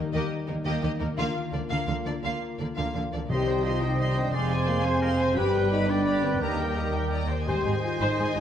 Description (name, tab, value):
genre	cinematic, heroic adventure film score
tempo	114 BPM (dotted quarters)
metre	6/8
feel	straight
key	C minor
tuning	A4 = 438 Hz
part	warm symphonic violin section	melody	0.0-8.4 s	Bb4 to C6	-36 LUFS	left 1 dB	none
part	dark symphonic violin section	second line	0.0-8.4 s	D4 to Ab5	-37 LUFS	left 1 dB	none
part	warm symphonic viola section	accompaniment	0.0-8.4 s	Bb3 to D5	-36 LUFS	right 1 dB	none
part	mellow French horn section	sustained chords	0.0-8.4 s	G3 to G4	-30 LUFS	left 2 dB	none
part	concert harp	arpeggios	0.0-8.4 s	F2 to C5	-36 LUFS	left 6 dB	none
part	dark symphonic cello section	bass	0.0-8.4 s	Eb2 to Eb3	-32 LUFS	right 2 dB	none
part	warm symphonic double bass section	bass	0.0-8.4 s	F1 to Eb2	-32 LUFS	right 2 dB	none
part	clear clarinet	second line	3.3-8.4 s	Bb4 to Eb5	-37 LUFS	right 1 dB	none
part	clear oboe	second line	3.3-8.4 s	G4 to Eb5	-35 LUFS	right 2 dB	none
part	concert flute	second line	3.3-8.4 s	G5 to Ab5	-38 LUFS	left 3 dB	none
part	warm trombone section	sustained chords	3.3-8.4 s	C3 to Ab3	-35 LUFS	right 4 dB	none
part	mellow trumpet section	stabs	3.3-8.4 s	Bb4 to C5	-34 LUFS	right 1 dB	none
part	timpani	percussion	3.3-3.8 s	C3	-34 LUFS	equal	none
room	wet scoring stage reverb, RT60 1.5 s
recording	none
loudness	-24 LUFS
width	side -9 dB against mid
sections	0.0-3.3 A section; 3.3-8.4 B section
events	build-up 0.0-3.3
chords	0.0 Eb; 1.2 Bb/D; 3.3 Cm; 4.3 Fm; 5.4 G; 6.4 Eb; 7.5 Ab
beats	| 0.14 0.65 | 1.17 1.70 | 2.23 2.76 | 3.30 3.82 | 4.34 4.85 | 5.37 5.89 | 6.42 6.95 | 7.48 8.00